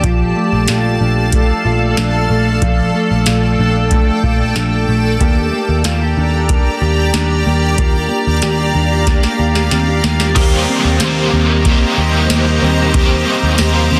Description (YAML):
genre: dream pop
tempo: 93 BPM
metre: 4/4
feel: straight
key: unclear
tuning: A4 = 440 Hz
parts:
  - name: granular cloud pad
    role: sustained chords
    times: 0.0-14.0 s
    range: G4 to Bb5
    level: -21 LUFS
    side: equal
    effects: built-in reverb
  - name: mellow electric guitar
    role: arpeggios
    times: 0.0-14.0 s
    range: F3 to G4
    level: -21 LUFS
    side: equal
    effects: lush chorus, tape echo
  - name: vintage muted picked electric bass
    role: bass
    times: 0.0-14.0 s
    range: Bb1 to Eb2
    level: -18 LUFS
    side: equal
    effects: none
  - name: booming analog drum machine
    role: drums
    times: 0.0-13.7 s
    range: crash cymbal, hi-hat, kick drum, ride cymbal, snare drum, tambourine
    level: -18 LUFS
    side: equal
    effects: none
  - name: large celesta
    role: texture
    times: 0.4-12.5 s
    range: F4 to D6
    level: -33 LUFS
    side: equal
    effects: none
  - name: biting overdriven guitar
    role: accompaniment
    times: 10.3-14.0 s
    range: Eb3 to C5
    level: -19 LUFS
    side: equal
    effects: tremolo, analog chorus
room: light reverb, digital ambience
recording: dense, heavily limited modern master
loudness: -14 LUFS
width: mono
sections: 0.0-10.4 A section; 10.4-14.0 B section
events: drum fill 9.1-10.4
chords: 0.0 Bbmaj7; 5.2 Ebmaj7; 10.4 Eb6